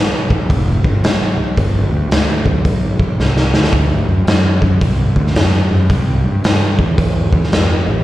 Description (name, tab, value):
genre	blues rock power trio and southern rock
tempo	111 BPM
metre	4/4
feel	swing 64% on 8ths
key	unclear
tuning	A4 = 440 Hz
part	fuzz fingered electric bass	bass	0.0-8.0 s	F1 to G2	-15 LUFS	equal	overdrive
part	raw garage drum kit	drums	0.3-7.7 s	hi-hat, kick drum, snare drum	-15 LUFS	equal	none
room	little or no reverb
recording	live gig heard through the venue's PA, recital hall reverb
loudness	-12 LUFS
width	side -15 dB against mid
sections	0.0-8.0 A section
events	drum fill 3.2-3.7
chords	none